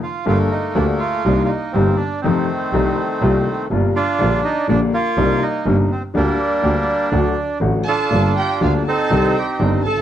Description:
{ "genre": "tango", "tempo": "122 BPM", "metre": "4/4", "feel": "rubato", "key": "G minor", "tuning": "A4 = 436 Hz", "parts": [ { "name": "bandoneon", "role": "melody", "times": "0.0-10.0 s", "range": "Eb3 to A4", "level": "-20 LUFS", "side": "right 2 dB", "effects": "none" }, { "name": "warm baby grand piano", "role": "accompaniment", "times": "0.3-10.0 s", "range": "G1 to G4", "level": "-20 LUFS", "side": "left 3 dB", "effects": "none" }, { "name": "clear double bass", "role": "bass", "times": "0.3-10.0 s", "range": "G1 to F2", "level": "-20 LUFS", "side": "right 2 dB", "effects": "transformer saturation" }, { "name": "dark studio violin section", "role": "second line", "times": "7.9-10.0 s", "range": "F5 to A5", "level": "-25 LUFS", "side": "equal", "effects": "none" } ], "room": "light reverb", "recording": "worn, warbling old tape, cassette tape, warbly pitch drift", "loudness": "-15 LUFS", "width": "side -10 dB against mid", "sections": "0.3-10.0 A section", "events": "break 0.0", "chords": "0.3 Gmadd9; 1.3 Cm7; 2.2 F7; 3.2 C7sus4; 4.2 Gm7/Bb; 5.2 Cm7; 6.2 Gm/D; 7.1 D; 8.1 Gm7; 9.1 Cm" }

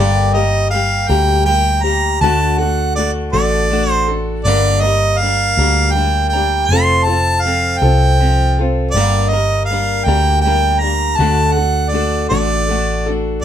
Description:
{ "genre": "folk rock and heartland rock", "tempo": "54 BPM (dotted quarters)", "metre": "6/8", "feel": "straight", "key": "G minor", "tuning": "A4 = 441 Hz", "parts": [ { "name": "clear harmonica", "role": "melody", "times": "0.0-13.4 s", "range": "D5 to C6", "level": "-16 LUFS", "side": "right 2 dB", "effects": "none" }, { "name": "picked steel-string acoustic guitar", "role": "accompaniment", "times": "0.0-13.4 s", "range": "G2 to Bb4", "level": "-19 LUFS", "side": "left 4 dB", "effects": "none" }, { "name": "hollow-body short-scale picked electric bass", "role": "bass", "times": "0.0-13.4 s", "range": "F1 to D2", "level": "-17 LUFS", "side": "equal", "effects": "none" } ], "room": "light reverb", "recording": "band playing live in one room", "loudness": "-12 LUFS", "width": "side -10 dB against mid", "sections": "0.0-13.4 A section", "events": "none", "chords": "0.0 Gm; 2.2 D; 4.5 Gm; 6.7 F; 8.9 Gm; 11.2 D" }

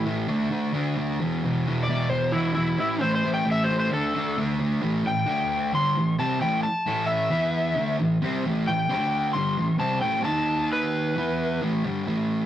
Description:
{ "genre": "rock", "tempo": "132 BPM", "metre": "4/4", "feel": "straight", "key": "unclear", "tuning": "A4 = 439 Hz", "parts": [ { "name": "overdriven slide guitar", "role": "melody", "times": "0.0-11.6 s", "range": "E4 to C6", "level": "-25 LUFS", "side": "left 1 dB", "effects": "none" }, { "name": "fuzz guitar", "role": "riff", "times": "0.0-12.5 s", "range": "E2 to E4", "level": "-24 LUFS", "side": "equal", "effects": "distortion" } ], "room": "wet studio reverb, RT60 0.6 s", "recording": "rough rehearsal-room recording, tube saturation", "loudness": "-22 LUFS", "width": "side -11 dB against mid", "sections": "0.0-4.8 A section; 4.8-12.1 B section", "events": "none", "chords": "0.3 D5; 1.2 E5; 2.8 A5; 3.9 D5; 4.8 A5; 5.3 D5; 5.7 A5; 7.3 E5; 7.8 A5; 8.9 D5; 9.3 A5; 10.2 D#5; 11.2 E5; 11.6 A5" }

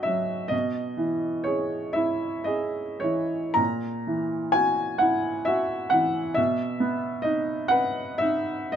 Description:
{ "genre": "classical, romantic nocturne for solo piano", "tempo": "35-46 BPM (dotted quarters)", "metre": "12/8", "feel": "rubato", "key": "B major", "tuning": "A4 = 440 Hz", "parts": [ { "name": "bright upright piano", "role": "solo", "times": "0.0-8.8 s", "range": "A#2 to A#5", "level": "-23 LUFS", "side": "equal", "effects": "none" } ], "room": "light reverb", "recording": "close, detailed microphones", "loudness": "-23 LUFS", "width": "side -8 dB against mid", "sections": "0.0-8.8 A section", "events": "none", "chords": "0.0 B; 0.5 C#m9/B; 3.6 F#7/A#; 6.4 B" }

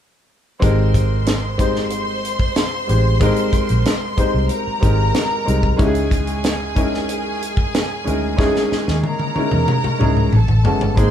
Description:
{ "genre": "lush 1970s-style soul", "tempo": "93 BPM", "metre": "4/4", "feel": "straight", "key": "Ab major", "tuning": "A4 = 439 Hz", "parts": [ { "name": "clear studio violin section", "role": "second line", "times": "0.6-11.1 s", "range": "Ab4 to C6", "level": "-25 LUFS", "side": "equal", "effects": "none" }, { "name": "clear concert grand piano", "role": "accompaniment", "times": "0.6-11.1 s", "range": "Ab3 to C5", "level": "-21 LUFS", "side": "left 1 dB", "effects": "none" }, { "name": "vintage muted fingered electric bass", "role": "bass", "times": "0.6-11.1 s", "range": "Gb1 to Fb2", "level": "-19 LUFS", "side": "equal", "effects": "none" }, { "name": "tight funk drum kit", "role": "drums", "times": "0.6-11.1 s", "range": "hi-hat, kick drum, snare drum, toms", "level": "-20 LUFS", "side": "equal", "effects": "none" } ], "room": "moderate studio ambience, RT60 0.5 s", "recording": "band playing live in one room", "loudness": "-15 LUFS", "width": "side -9 dB against mid", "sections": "0.6-11.0 A section", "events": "drum fill 8.4-11.0", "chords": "0.6 Abmaj7; 5.8 Dbmadd9; 10.3 Amaj7" }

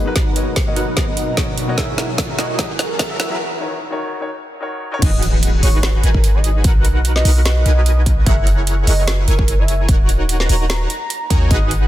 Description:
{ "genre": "future bass", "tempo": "148 BPM", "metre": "4/4", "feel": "swing 54% on 16ths, half-time", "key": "B major", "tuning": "A4 = 439 Hz", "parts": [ { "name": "warm velvety synth lead", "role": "melody", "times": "0.0-11.7 s", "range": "A#4 to A#5", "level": "-27 LUFS", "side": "right 1 dB", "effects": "chorus, sidechain pumping, tape echo" }, { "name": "clear baby grand piano", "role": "accompaniment", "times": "0.0-5.0 s", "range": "D#3 to E5", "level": "-27 LUFS", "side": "left 2 dB", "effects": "sidechain pumping, dub echo" }, { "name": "ethereal airy pad", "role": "sustained chords", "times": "0.0-3.4 s", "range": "F#2 to A#5", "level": "-29 LUFS", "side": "equal", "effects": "ensemble chorus, built-in reverb, sidechain pumping" }, { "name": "supersaw stab", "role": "riff", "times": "0.0-11.9 s", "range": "D#4 to G#5", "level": "-24 LUFS", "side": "equal", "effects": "sidechain pumping, low-pass filter" }, { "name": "riser and impact", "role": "sound effects", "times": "0.0-6.6 s", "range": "none", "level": "-29 LUFS", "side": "equal", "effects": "none" }, { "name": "electronic kick drum", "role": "drums", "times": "0.2-11.6 s", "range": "none", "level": "-17 LUFS", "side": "equal", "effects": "none" }, { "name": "trap drum kit", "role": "drums", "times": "0.2-11.8 s", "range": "crash cymbal, hi-hat, snare drum", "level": "-22 LUFS", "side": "right 1 dB", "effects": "soft clipping on snare" }, { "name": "warm 808-style bass", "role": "bass", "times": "5.0-11.9 s", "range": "D#1 to D#2", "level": "-15 LUFS", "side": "equal", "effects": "sidechain pumping" } ], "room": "little or no reverb", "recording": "dense, heavily limited modern master, high-pass filter", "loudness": "-14 LUFS", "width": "side -14 dB against mid", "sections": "0.0-5.0 A section; 5.0-11.9 B section", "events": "build-up 0.0-5.0; drum fill 0.0-3.4; riser 0.0-3.4; break 3.4-5.0; drop 5.0-11.9; impact 5.0-6.6", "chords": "0.2 Bmaj7; 1.8 F#9; 3.4 D#m7; 5.0 G#m7; 6.6 Bmaj7; 8.3 F#9; 9.9 D#m7" }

